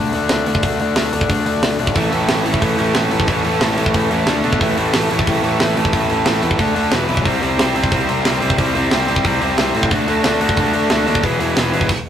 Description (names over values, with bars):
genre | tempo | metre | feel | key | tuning
punk rock | 181 BPM | 4/4 | straight | unclear | A4 = 440 Hz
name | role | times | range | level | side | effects
overdriven electric guitar | riff | 0.0-11.9 s | E2 to D4 | -19 LUFS | left 5 dB | none
fuzz picked electric bass | bass | 0.0-11.9 s | E1 to B2 | -22 LUFS | right 1 dB | overdrive
tight metal drum kit | drums | 0.1-12.0 s | crash cymbal, hi-hat, kick drum, snare drum | -19 LUFS | right 1 dB | none
tight distorted guitar | riff | 2.0-11.9 s | A2 to C5 | -20 LUFS | right 6 dB | distortion
room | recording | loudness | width
moderate stone room reverb, RT60 1.0 s | rough rehearsal-room recording | -14 LUFS | side -9 dB against mid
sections
0.0-12.1 A section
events
stop 11.9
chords
0.0 D5; 2.0 A; 4.3 D5; 4.6 A; 6.6 D5; 6.9 E5; 7.3 C; 9.9 D; 11.2 E